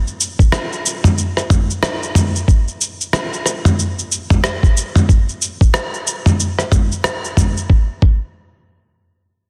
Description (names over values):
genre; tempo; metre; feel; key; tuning
organic downtempo; 92 BPM; 4/4; swing 60% on 16ths; none; none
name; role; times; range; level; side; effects
dusty soul sampler-style drum kit; drums; 0.1-7.7 s; rim click, shaker, toms; -18 LUFS; equal; soft clipping on snare
electronic kick drum; drums; 0.4-8.2 s; none; -14 LUFS; equal; none
room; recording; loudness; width
moderate scoring stage reverb, RT60 2.0 s; dense, heavily limited modern master; -16 LUFS; mono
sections
0.0-7.7 A section; 7.7-9.5 B section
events
none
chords
none